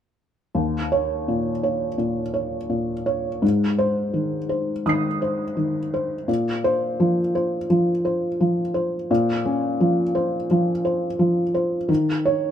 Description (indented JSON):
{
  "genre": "neoclassical minimalist piano",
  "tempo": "85 BPM",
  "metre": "4/4",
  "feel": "rubato",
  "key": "Bb minor",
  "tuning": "A4 = 438 Hz",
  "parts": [
    { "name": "felt-muted upright piano", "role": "solo", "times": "0.5-12.5 s", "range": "Eb2 to C7", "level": "-20 LUFS", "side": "equal", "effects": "none" }
  ],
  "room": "light reverb",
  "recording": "minimal, uncompressed stereo recording",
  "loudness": "-20 LUFS",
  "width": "side -9 dB against mid",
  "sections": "0.6-12.5 A section",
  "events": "none",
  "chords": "0.6 Eb5; 3.4 Ab; 6.3 Bbmadd9; 11.9 Eb5",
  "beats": "| 0.55 1.28 2.00 2.72 | 3.43 4.15 4.86 5.58 | 6.28 6.99 7.70 8.40 | 9.10 9.79 10.49 11.20 | 11.89"
}